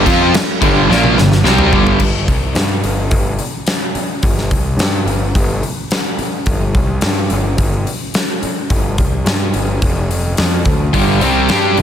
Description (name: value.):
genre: hard rock.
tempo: 108 BPM.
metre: 4/4.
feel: straight.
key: G minor.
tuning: A4 = 440 Hz.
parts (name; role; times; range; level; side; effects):
cranked stack guitar; riff; 0.0-2.0, 10.9-11.8 s; G2 to G4; -15 LUFS; left 11 dB; overdrive.
overdriven electric guitar; riff; 0.0-2.0, 10.9-11.8 s; G2 to G4; -15 LUFS; right 10 dB; none.
fuzz picked electric bass; bass; 0.0-11.8 s; F1 to G2; -17 LUFS; equal; overdrive.
huge arena drum kit; drums; 0.1-11.8 s; crash cymbal, hi-hat, kick drum, snare drum, toms; -16 LUFS; equal; none.
room: small room reverb.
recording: none.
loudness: -12 LUFS.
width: side -9 dB against mid.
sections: 0.0-2.0 A section; 2.0-11.8 B section.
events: drum fill 0.9-2.0.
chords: 0.0 Gm; 2.0 Gsus4; 9.8 N.C.; 10.4 G5.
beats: 0.34 0.90 1.45 | 2.01 2.57 3.13 3.68 | 4.24 4.80 5.36 5.91 | 6.47 7.03 7.59 8.14 | 8.70 9.26 9.82 10.38 | 10.94 11.49.